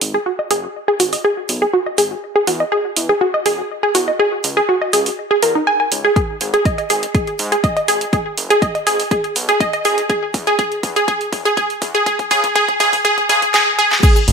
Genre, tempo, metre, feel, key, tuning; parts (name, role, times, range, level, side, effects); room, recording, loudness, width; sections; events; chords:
progressive house; 122 BPM; 4/4; straight; G# minor; A4 = 440 Hz
fat analog bass; bass; 0.0-14.3 s; E1 to G#2; -25 LUFS; equal; tube saturation, sidechain pumping, high-pass filter
house drum kit; drums; 0.0-14.3 s; cabasa, crash cymbal, hi-hat, snare drum; -21 LUFS; right 2 dB; sidechain pumping on hats, sidechain pumping on cymbals, sidechain pumping on perc
wide unison pluck; arpeggios; 0.1-14.2 s; D#4 to G#5; -15 LUFS; equal; sidechain pumping, ping-pong delay
electronic kick drum; drums; 6.2-14.1 s; -17 LUFS; equal
moderate digital room reverb, RT60 1.1 s, digital ambience; high-pass filter; -14 LUFS; side -6 dB against mid
0.0-14.0 A section
build-up 0.0-14.0; filter sweep on synth pluck 0.0-14.0; filter sweep 0.0-14.0; drum fill 6.2-13.5, 13.5-14.0
0.0 G#m; 2.2 E; 4.2 C#m; 6.2 G#5; 10.1 E; 12.1 C#5